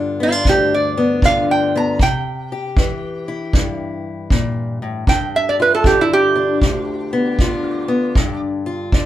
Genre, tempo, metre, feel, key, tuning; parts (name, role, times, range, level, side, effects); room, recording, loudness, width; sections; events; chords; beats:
acoustic country blues, solo or duo; 78 BPM; 4/4; swing 64% on 8ths; G mixolydian; A4 = 439 Hz
fingerpicked steel-string acoustic guitar; accompaniment; 0.0-9.1 s; D2 to G4; -20 LUFS; left 2 dB
metal-body resonator slide guitar; melody; 0.2-8.4 s; E4 to Bb5; -17 LUFS; right 3 dB
kick drum; drums; 0.5-9.1 s; -17 LUFS; equal
moderate studio reverb, RT60 0.5 s; band playing live in one room; -15 LUFS; side -13 dB against mid
0.0-9.1 A section
resonator guitar played with a steel bar solo 0.0-9.1
0.0 G7; 2.0 C7; 5.1 G7
0.45 1.23 | 2.00 2.77 3.54 4.32 | 5.09 5.86 6.63 7.40 | 8.17 8.94